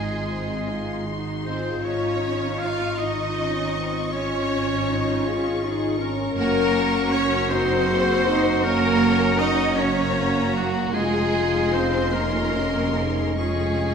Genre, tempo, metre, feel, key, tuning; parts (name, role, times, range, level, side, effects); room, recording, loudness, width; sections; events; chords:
cinematic; 47-54 BPM (dotted quarters); 6/8; rubato; A4 = 439 Hz
warm symphonic violin section; melody; 0.0-13.9 s; Bb5 to Db6; -33 LUFS; left 3 dB
bright oboe; second line; 0.0-13.9 s; Gb4 to F5; -30 LUFS; right 2 dB
silver concert flute; second line; 0.0-13.9 s; Eb5 to Gb5; -32 LUFS; left 2 dB
warm clarinet; second line; 0.0-13.9 s; Db4 to Ab4; -32 LUFS; left 1 dB
warm symphonic violin section; second line; 0.0-13.9 s; Gb4 to F5; -28 LUFS; left 3 dB
rich symphonic viola section; accompaniment; 0.0-13.9 s; Db3 to Bb4; -31 LUFS; equal
warm French horn section; sustained chords; 0.0-13.9 s; Bb3 to Gb4; -27 LUFS; left 3 dB
rich studio cello section; bass; 0.0-13.9 s; Gb3 to F4; -27 LUFS; right 3 dB
rich symphonic double bass section; bass; 0.0-13.9 s; F1 to Ab1; -28 LUFS; right 4 dB
wet recital hall reverb, RT60 1.2 s; -20 LUFS; side -6 dB against mid
0.0-13.9 A section
0.0 Ab; 1.8 Dbadd9/Ab; 6.4 Gb; 10.9 Dbadd9/F